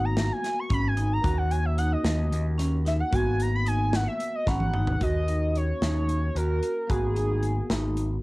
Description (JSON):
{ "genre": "progressive instrumental, band music in an uneven meter", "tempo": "223 BPM (eighths)", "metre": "7/8", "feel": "straight", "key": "G# minor", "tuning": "A4 = 440 Hz", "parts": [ { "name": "pulse-width lead", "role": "melody", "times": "0.0-8.0 s", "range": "G#4 to C#6", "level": "-30 LUFS", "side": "equal", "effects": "chorus, cassette tape" }, { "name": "bell-like tine electric piano", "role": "accompaniment", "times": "0.0-8.2 s", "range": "A#3 to F#4", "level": "-35 LUFS", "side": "left 2 dB", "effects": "lush chorus, cassette tape" }, { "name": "vibraphone with medium mallets", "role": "arpeggios", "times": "0.0-8.0 s", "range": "C#4 to F#4", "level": "-32 LUFS", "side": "right 1 dB", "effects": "cassette tape, plate reverb" }, { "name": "overdriven picked electric bass", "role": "bass", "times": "0.0-8.2 s", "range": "G#1 to D#2", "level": "-26 LUFS", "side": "equal", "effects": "none" }, { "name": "natural country drum kit", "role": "drums", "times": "0.2-8.1 s", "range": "hi-hat, kick drum, snare drum, toms", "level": "-30 LUFS", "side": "equal", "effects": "cassette tape" } ], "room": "moderate booth ambience, RT60 0.2 s", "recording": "home recording on cassette", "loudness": "-23 LUFS", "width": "side -21 dB against mid", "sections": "0.0-5.0 A section; 5.0-8.2 B section", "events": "analog synth lead solo 0.0-5.0; drum fill 4.5-5.0", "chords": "0.0 G#m9; 1.2 D#m7; 3.1 G#m9; 5.0 D#m7; 6.9 G#m9" }